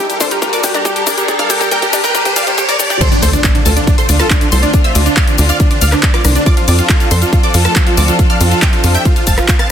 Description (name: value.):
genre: uplifting trance.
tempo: 139 BPM.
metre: 4/4.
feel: straight.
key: D minor.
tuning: A4 = 441 Hz.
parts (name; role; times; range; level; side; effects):
dense compressed supersaw; melody; 0.0-9.7 s; D4 to A5; -17 LUFS; right 1 dB; sidechain pumping, ping-pong delay.
wide unison pluck; second line; 0.0-9.7 s; D5 to A6; -22 LUFS; right 1 dB; sidechain pumping, ping-pong delay.
warm studio string section; sustained chords; 0.0-9.7 s; D3 to Bb4; -20 LUFS; equal; sidechain pumping.
analog pluck; arpeggios; 0.0-3.0 s; D4 to G5; -21 LUFS; left 4 dB; chorus, sidechain pumping, ping-pong delay.
riser and impact; sound effects; 0.0-4.7 s; none; -19 LUFS; equal; none.
house drum kit; drums; 0.1-9.7 s; crash cymbal, handclaps, hi-hat, rim click, shaker; -18 LUFS; left 2 dB; small room ambience.
tight sequencer bass; bass; 0.2-9.4 s; F1 to F2; -12 LUFS; equal; sidechain pumping.
electronic kick drum; drums; 0.2-9.6 s; none; -13 LUFS; equal; high-pass filter on kick, small room ambience.
room: light reverb, digital ambience.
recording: dense, heavily limited modern master, high-pass filter.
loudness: -9 LUFS.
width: side -9 dB against mid.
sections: 0.0-3.0 A section; 3.0-9.7 B section.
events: build-up 0.0-3.0; drum fill 0.0-3.0; riser 0.0-3.0; drop 3.0-9.7; impact 3.0-4.7.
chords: 0.0 Gmadd9; 3.0 Dm7; 6.5 F6.